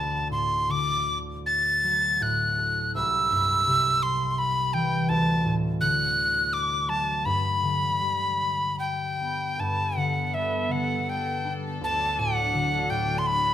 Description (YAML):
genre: celtic folk, Celtic slow air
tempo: 73-86 BPM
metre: 3/4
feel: rubato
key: G major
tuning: A4 = 436 Hz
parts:
  - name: breathy bright tin whistle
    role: melody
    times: 0.0-13.5 s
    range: E5 to A6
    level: -24 LUFS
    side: equal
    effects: none
  - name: concert harp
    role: accompaniment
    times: 0.0-13.5 s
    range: C2 to A4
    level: -29 LUFS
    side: equal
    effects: none
  - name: dark studio string section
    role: sustained chords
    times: 9.6-13.5 s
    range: F#3 to A4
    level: -33 LUFS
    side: equal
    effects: none
room: moderate recital hall reverb, RT60 1.6 s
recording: minimal, uncompressed stereo recording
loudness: -23 LUFS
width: side -10 dB against mid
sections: 0.0-9.6 A section; 9.6-13.5 B section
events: none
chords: 0.0 D; 2.9 C; 5.1 D; 7.2 G; 9.6 Gadd9; 11.8 D